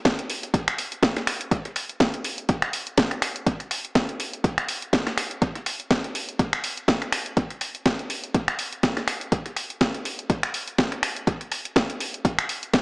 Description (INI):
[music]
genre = house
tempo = 123 BPM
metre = 4/4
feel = swing 56% on 16ths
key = none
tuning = none
[part]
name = electronic kick drum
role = drums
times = 0.1-12.8 s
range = none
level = -23 LUFS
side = equal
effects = none
[part]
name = house drum kit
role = drums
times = 0.1-12.8 s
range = finger snaps, hi-hat, snare drum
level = -24 LUFS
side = equal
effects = sidechain pumping on hats, tape echo
[sound]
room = moderate plate reverb, RT60 1.8 s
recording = echo-heavy mix, small speaker sound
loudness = -23 LUFS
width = side -26 dB against mid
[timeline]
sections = 0.0-12.8 A section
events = none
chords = none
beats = 0.05 0.54 1.03 | 1.52 2.00 2.49 2.98 | 3.47 3.96 4.44 4.93 | 5.42 5.91 6.39 6.88 | 7.37 7.86 8.35 8.83 | 9.32 9.81 10.30 10.78 | 11.27 11.76 12.25 12.73